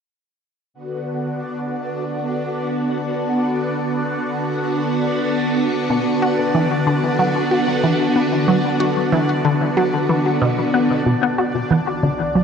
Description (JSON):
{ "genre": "ambient, sequencer-driven space music", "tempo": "93 BPM", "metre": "4/4", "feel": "straight", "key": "B minor", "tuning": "A4 = 441 Hz", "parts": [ { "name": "phased string machine", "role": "sustained chords", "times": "0.7-12.4 s", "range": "D3 to F#4", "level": "-20 LUFS", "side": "equal", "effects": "ensemble chorus, phaser" }, { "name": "bubbling stepped-filter texture", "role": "texture", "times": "1.1-12.4 s", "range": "D4 to D5", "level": "-27 LUFS", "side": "left 2 dB", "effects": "chorus, built-in reverb" }, { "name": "resonant blip pluck", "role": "riff", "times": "5.9-12.4 s", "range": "B2 to F#4", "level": "-19 LUFS", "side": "equal", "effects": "phaser, ping-pong delay" }, { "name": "round analog bass", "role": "bass", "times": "11.1-12.4 s", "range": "B1", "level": "-38 LUFS", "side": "equal", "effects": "tube saturation" } ], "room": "wet cathedral reverb, RT60 4.8 s", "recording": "in a vast, echoing space, cassette tape", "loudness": "-17 LUFS", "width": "side -6 dB against mid", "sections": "0.7-11.1 A section; 11.1-12.4 B section", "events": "filter sweep on synth arpeggio sound 11.1-12.4", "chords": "0.7 Bm" }